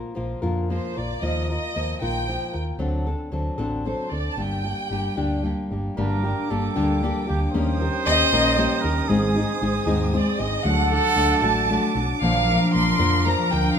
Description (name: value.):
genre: mexican folk, mariachi.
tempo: 76 BPM (dotted quarters).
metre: 6/8.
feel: rubato.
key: G minor.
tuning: A4 = 440 Hz.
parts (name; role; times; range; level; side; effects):
nylon-string guitar; accompaniment; 0.0-13.8 s; G2 to Bb4; -26 LUFS; left 3 dB; none.
hollow-body short-scale fingered electric bass; bass; 0.2-13.7 s; G1 to F2; -26 LUFS; right 1 dB; none.
rich chamber violin section; melody; 0.7-5.5, 8.1-13.8 s; C5 to C6; -24 LUFS; equal; none.
warm trumpet; second line; 6.0-13.7 s; G4 to C5; -27 LUFS; right 7 dB; none.
warm chamber violin section; sustained chords; 6.0-13.8 s; Bb3 to Eb6; -33 LUFS; right 2 dB; none.
concert harp; arpeggios; 6.0-13.8 s; F3 to Eb4; -27 LUFS; equal; none.
room: moderate recital hall reverb, RT60 1.7 s.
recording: minimal, uncompressed stereo recording.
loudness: -20 LUFS.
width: side -7 dB against mid.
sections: 0.0-6.0 A section; 6.0-13.8 A section.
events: none.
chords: 0.0 Bb; 1.2 Ebsus2; 2.8 D7; 4.4 Gm; 7.5 Eb7; 9.1 Ab; 10.6 D; 12.2 Bb.